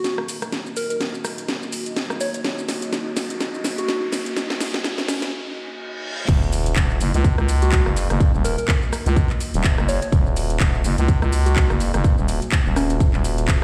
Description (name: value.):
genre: bass house.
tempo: 125 BPM.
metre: 4/4.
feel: swing 57% on 16ths.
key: Eb minor.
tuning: A4 = 440 Hz.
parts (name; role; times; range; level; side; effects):
soft struck synth lead; melody; 0.0-13.0 s; Db4 to Db5; -30 LUFS; equal; chorus, delay.
dark analog pad; sustained chords; 0.0-13.6 s; Bb3 to Eb5; -34 LUFS; equal; chorus, sidechain pumping.
house drum kit; drums; 0.0-13.6 s; crash cymbal, handclaps, hi-hat, rim click, shaker, snare drum; -29 LUFS; equal; none.
riser, reverse cymbal and impact; sound effects; 1.2-8.2 s; none; -35 LUFS; equal; none.
growling FM bass; bass; 6.3-13.6 s; Eb1 to Db2; -22 LUFS; equal; overdrive, sidechain pumping.
electronic kick drum; drums; 6.3-13.6 s; none; -20 LUFS; equal; none.
room: light reverb, digital ambience.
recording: played on a big sound system in a bare room, stone room reverb, high-pass filter.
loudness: -21 LUFS.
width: mono.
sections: 0.0-6.3 A section; 6.3-13.6 B section.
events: build-up 0.0-6.3; drum fill 0.0-5.3; filter sweep 0.0-6.3; riser 1.2-5.3; break 5.3-6.3; reverse cymbal 5.3-6.3; drop 6.3-13.6; impact 6.3-8.2.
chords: 0.0 Ebm.